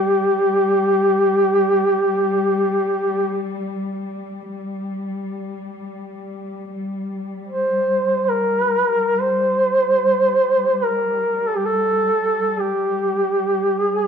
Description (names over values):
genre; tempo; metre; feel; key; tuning
caucasian folk, Caucasian lament; free time; none; none; G minor; A4 = 439 Hz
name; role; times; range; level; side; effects
mellow duduk; melody; 0.0-14.1 s; G4 to C5; -17 LUFS; equal; none
dark studio cello section; drone; 0.0-14.1 s; G3; -27 LUFS; left 2 dB; none
room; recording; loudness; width
moderate recital hall reverb, RT60 1.4 s; none; -17 LUFS; side -7 dB against mid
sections
0.0-6.7 A section; 6.7-14.1 A section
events
none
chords
none